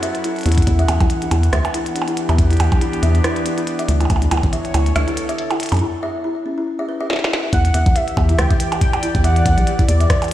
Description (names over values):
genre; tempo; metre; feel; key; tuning
IDM; 140 BPM; 4/4; swing 56% on 16ths; E dorian; A4 = 440 Hz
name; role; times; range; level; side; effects
warbly tape-like pad; sustained chords; 0.0-10.3 s; D3 to F#5; -25 LUFS; equal; chorus, built-in reverb
kalimba; arpeggios; 0.0-10.2 s; E3 to E5; -24 LUFS; left 1 dB; digital delay
glitchy drum kit; drums; 0.0-10.3 s; hi-hat, percussion blips, rim click, snare drum; -24 LUFS; right 2 dB; digital delay
rubbery square bass; bass; 0.5-10.1 s; A1 to F#2; -16 LUFS; equal; none
electronic kick drum; drums; 0.6-4.5, 7.5-10.2 s; none; -17 LUFS; equal; none
warm velvety synth lead; melody; 7.5-10.3 s; D5 to G5; -22 LUFS; right 1 dB; chorus, digital delay
room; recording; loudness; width
light reverb; played on a big sound system in a bare room, stone room reverb; -15 LUFS; side -13 dB against mid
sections
0.0-7.5 A section; 7.5-10.3 B section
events
break 5.8-7.5; drum fill 7.1-7.5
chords
0.0 F#m7; 0.7 Em9; 4.1 Bm9; 5.8 C#m; 6.7 E5; 7.5 Em9